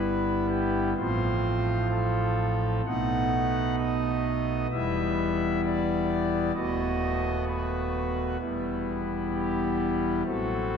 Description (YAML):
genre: classical, chorale-style piece for pipe organ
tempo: 65 BPM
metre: 4/4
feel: straight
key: E minor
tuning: A4 = 441 Hz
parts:
  - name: pipe organ, foundations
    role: solo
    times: 0.0-10.8 s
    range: D#1 to F#5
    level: -25 LUFS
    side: equal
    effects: none
room: wet church reverb, RT60 3.5 s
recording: none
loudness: -25 LUFS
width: side -6 dB against mid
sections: 0.0-10.8 A section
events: none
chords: 0.0 Em/G; 1.0 F/A; 2.9 B7; 4.7 Em; 6.5 B7/D#; 8.4 Em; 10.3 F#dim/A